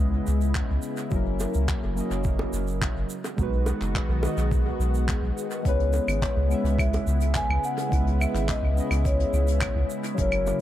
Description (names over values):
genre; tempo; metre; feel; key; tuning
sunset chillout; 106 BPM; 4/4; straight; C# dorian; A4 = 440 Hz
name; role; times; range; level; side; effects
soft electric-piano-like synth keys; accompaniment; 0.0-10.6 s; F#3 to E5; -32 LUFS; moving between left 6 dB and right 6 dB; chorus, auto-pan, dub echo
lush unison pad; sustained chords; 0.0-10.6 s; C#3 to F#4; -32 LUFS; left 1 dB; chorus, phaser
round analog bass; bass; 0.0-10.5 s; F#1 to C#2; -25 LUFS; equal; none
vintage brush drum kit; drums; 0.3-10.6 s; claves, handclaps, hi-hat, shaker; -35 LUFS; equal; dub echo
electronic kick drum; drums; 0.6-10.3 s; none; -28 LUFS; equal; none
bongos; percussion; 1.4-10.6 s; none; -37 LUFS; right 1 dB; dub echo
vibraphone with soft mallets; melody; 5.7-10.6 s; C#5 to G#5; -29 LUFS; left 1 dB; dub echo
room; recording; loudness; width
light reverb; echo-heavy mix; -23 LUFS; side -12 dB against mid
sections
0.0-10.6 A section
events
none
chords
0.0 C#m7; 1.1 F#7; 3.1 B6; 5.7 C#m7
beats
0.56 | 1.12 1.69 2.25 2.82 | 3.39 3.95 4.52 5.08 | 5.65 6.22 6.78 7.35 | 7.91 8.48 9.05 9.61 | 10.18